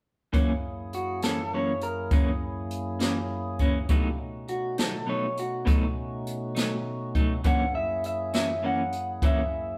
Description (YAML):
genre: slow blues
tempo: 68 BPM (dotted quarters)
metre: 12/8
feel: straight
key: F# mixolydian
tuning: A4 = 440 Hz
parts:
  - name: electric guitar through a small old amp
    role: accompaniment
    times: 0.3-9.4 s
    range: F#2 to D#4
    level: -32 LUFS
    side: equal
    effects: tremolo
  - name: tonewheel organ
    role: sustained chords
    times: 0.3-9.8 s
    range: F#2 to A4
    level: -37 LUFS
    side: equal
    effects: slow rotary speaker
  - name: jazz brush drum kit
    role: drums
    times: 0.3-9.4 s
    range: hi-hat, kick drum, snare drum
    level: -28 LUFS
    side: equal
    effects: none
  - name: electric guitar through a small old amp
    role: melody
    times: 0.9-9.8 s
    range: F#4 to F#5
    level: -32 LUFS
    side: equal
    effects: none
room: light reverb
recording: band playing live in one room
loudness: -28 LUFS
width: mono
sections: 0.3-9.8 A section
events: none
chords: 0.3 F#7; 3.9 B7; 7.4 F#7